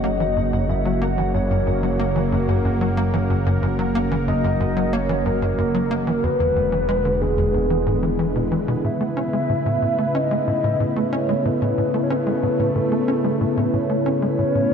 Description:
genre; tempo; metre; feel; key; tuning
ambient, sequencer-driven space music; 92 BPM; 4/4; straight; A lydian from 8.8 s; A4 = 443 Hz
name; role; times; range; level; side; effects
soft octave-layered synth lead; melody; 0.0-14.7 s; G#4 to F#5; -24 LUFS; equal; chorus, phaser, ping-pong delay
sweeping resonant pad; sustained chords; 0.0-14.7 s; C#3 to B4; -23 LUFS; equal; chorus
tight sequencer bass; riff; 0.0-14.7 s; E2 to C#4; -24 LUFS; equal; lush chorus, ping-pong delay
fat analog bass; bass; 0.0-8.8 s; E1 to F#1; -26 LUFS; equal; none
pulsing gated texture; texture; 0.0-8.9 s; F#5; -38 LUFS; right 5 dB; chorus, built-in reverb
room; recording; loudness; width
wet cathedral reverb, RT60 6.7 s; in a vast, echoing space; -18 LUFS; side -7 dB against mid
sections
0.0-8.8 A section; 8.8-14.7 B section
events
none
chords
0.0 F#; 6.2 E7; 8.8 Aadd9

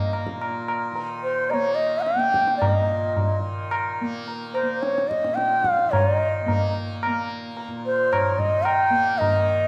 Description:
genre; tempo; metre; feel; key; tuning
indian classical, Hindustani; 109 BPM; 3/4; straight; Bb raga bageshri; A4 = 440 Hz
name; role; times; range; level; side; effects
bansuri; melody; 0.0-9.7 s; C5-20c to G5; -24 LUFS; equal; none
tanpura; drone; 0.0-9.7 s; Bb2 to Bb3; -34 LUFS; equal; none
tabla; percussion; 0.1-9.4 s; none; -28 LUFS; equal; none
room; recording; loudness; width
wet scoring stage reverb, RT60 1.5 s; none; -23 LUFS; mono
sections
0.0-9.2 A section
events
none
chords
none

